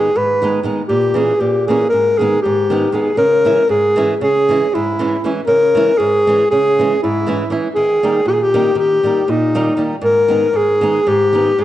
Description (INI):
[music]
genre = balkan folk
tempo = 236 BPM (eighths)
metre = 9/8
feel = straight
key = unclear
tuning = A4 = 440 Hz
[part]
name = mellow alto saxophone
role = melody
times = 0.0-11.6 s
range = D#4 to B4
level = -13 LUFS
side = left 1 dB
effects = none
[part]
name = flamenco guitar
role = accompaniment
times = 0.0-11.6 s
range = G#2 to E4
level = -19 LUFS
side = right 2 dB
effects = none
[sound]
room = moderate recital hall reverb, RT60 1.7 s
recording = nothing above 10.4 kHz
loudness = -12 LUFS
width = side -13 dB against mid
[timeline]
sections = 0.0-3.2 A section; 3.2-11.6 B section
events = none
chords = 0.0 G#m; 0.9 A#dim; 1.9 G#m; 3.2 C#m; 7.8 D#; 10.0 G#m